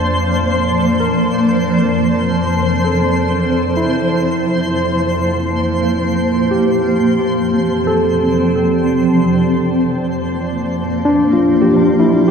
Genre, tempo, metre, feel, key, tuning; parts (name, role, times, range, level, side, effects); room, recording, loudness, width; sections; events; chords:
ambient; 65 BPM; 3/4; straight; F major; A4 = 436 Hz
granular cloud pad; sustained chords; 0.0-12.3 s; F3 to A5; -15 LUFS; equal; built-in reverb, shimmer reverb
deep rumbling drone; bass; 0.0-12.3 s; F2; -26 LUFS; equal; built-in reverb
twinkling granular texture; texture; 0.0-12.3 s; C5 to C6; -22 LUFS; equal; built-in reverb, shimmer reverb
barky tine electric piano; arpeggios; 1.0-12.3 s; D4 to Bb4; -18 LUFS; equal; ping-pong delay, shimmer reverb
wet concert hall reverb, RT60 2.0 s; dark, warm production; -13 LUFS; side -6 dB against mid
0.0-12.3 A section
fade-in on tine electric piano 0.0-12.3; fade-out on synth drone 0.0-12.3
0.0 Bbmaj7/F; 1.5 F6; 4.2 Gm11/F; 7.0 F6; 9.7 Bbmaj7/F